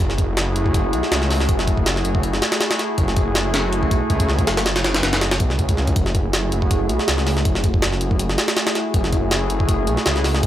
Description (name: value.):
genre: drum and bass, jungle.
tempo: 161 BPM.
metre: 4/4.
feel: swing 54% on 16ths.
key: F# minor.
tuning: A4 = 435 Hz.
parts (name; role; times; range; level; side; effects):
warbly tape-like pad; sustained chords; 0.0-10.5 s; A3 to G#4; -23 LUFS; equal; chorus, built-in reverb.
detuned saw bass; bass; 0.0-10.5 s; F#1 to C#2; -22 LUFS; equal; none.
jungle sampler-style drum kit; drums; 0.0-10.5 s; hi-hat, kick drum, snare drum; -20 LUFS; equal; studio reverb.
room: little or no reverb.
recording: dry, gritty hardware recording.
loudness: -17 LUFS.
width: side -12 dB against mid.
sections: 0.0-10.5 A section.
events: none.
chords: 0.0 F#m9.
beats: | 0.00 0.37 0.74 1.12 | 1.49 1.86 2.24 2.61 | 2.98 3.35 3.73 4.10 | 4.47 4.84 5.22 5.59 | 5.96 6.33 6.71 7.08 | 7.45 7.83 8.20 8.57 | 8.94 9.32 9.69 10.06 | 10.43.